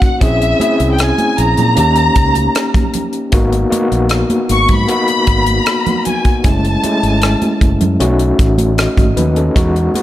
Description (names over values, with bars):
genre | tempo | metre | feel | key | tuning
lush 1970s-style soul | 77 BPM | 4/4 | straight | unclear | A4 = 440 Hz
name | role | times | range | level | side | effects
warm studio violin section | melody | 0.0-7.6 s | E5 to C#6 | -16 LUFS | left 1 dB | none
overdriven tine electric piano | accompaniment | 0.0-10.0 s | G#3 to D#5 | -16 LUFS | left 1 dB | fast tremolo
tight funk drum kit | drums | 0.0-10.0 s | hi-hat, kick drum, rim click | -16 LUFS | equal | none
fingered electric bass | bass | 0.2-9.9 s | F#1 to A#2 | -15 LUFS | equal | none
congas | percussion | 0.2-10.0 s | none | -23 LUFS | right 3 dB | none
room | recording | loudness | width
light reverb, small room ambience | none | -11 LUFS | side -13 dB against mid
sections
0.0-10.0 A section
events
none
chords
0.2 A#m7b5; 1.8 D#7; 3.3 G#m9; 6.4 F#m7; 8.0 B7